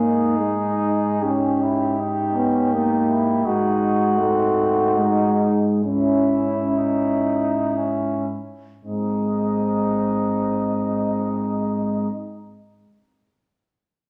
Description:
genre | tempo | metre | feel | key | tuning
classical, hymn-like piece for brass band | 53-84 BPM | 3/4 | rubato | unclear | A4 = 440 Hz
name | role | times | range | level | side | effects
warm flugelhorn | melody | 0.0-12.1 s | B#3 to D#5 | -32 LUFS | equal | none
mellow flugelhorn | second line | 0.0-12.1 s | D#4 to G#4 | -27 LUFS | equal | none
clear trombone section | accompaniment | 0.0-12.1 s | B#3 to D#4 | -28 LUFS | equal | none
warm euphonium | accompaniment | 0.0-12.1 s | G#3 to C#4 | -24 LUFS | equal | none
dark tuba | bass | 0.0-12.1 s | G#2 | -32 LUFS | equal | none
room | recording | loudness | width
wet recital hall reverb, RT60 1.3 s | none | -21 LUFS | mono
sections
0.0-8.8 A section; 8.8-12.1 B section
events
slowing down 2.3-8.8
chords
0.0 G#5; 1.2 D#7/G#; 3.4 G#7; 5.9 C#m/G#; 8.8 G#

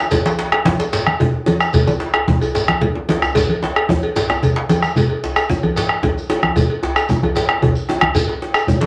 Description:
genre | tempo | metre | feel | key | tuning
west african traditional, West African drum ensemble | 149 BPM (dotted quarters) | 12/8 | straight | none | none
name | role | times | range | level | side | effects
bombo | percussion | 0.1-8.8 s | none | -21 LUFS | equal | none
congas | percussion | 0.1-8.9 s | none | -21 LUFS | equal | none
cowbell | percussion | 0.1-8.9 s | none | -25 LUFS | equal | none
djembe | percussion | 0.1-8.9 s | none | -27 LUFS | equal | none
djembe | percussion | 0.1-8.9 s | none | -27 LUFS | equal | none
shekere | percussion | 0.1-8.7 s | none | -31 LUFS | equal | none
room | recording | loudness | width
wet studio ambience, RT60 0.5 s | none | -17 LUFS | mono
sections
0.0-5.0 A section; 5.0-8.9 B section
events
speeding up 0.0-8.9; drum fill 3.4-5.0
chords
none

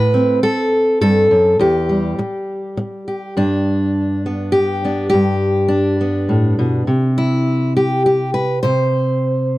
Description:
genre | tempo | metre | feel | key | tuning
folk, solo fingerstyle acoustic guitar | 102 BPM | 3/4 | straight | G major | A4 = 439 Hz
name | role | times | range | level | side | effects
fingerpicked steel-string acoustic guitar | solo | 0.0-9.6 s | E2 to C5 | -14 LUFS | equal | none
room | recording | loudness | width
small room ambience | dry, close 1970s-style studio recording | -14 LUFS | side -17 dB against mid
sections
0.0-3.4 A section; 3.4-9.6 B section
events
none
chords
0.0 Am; 1.6 Em; 3.4 G; 6.9 C

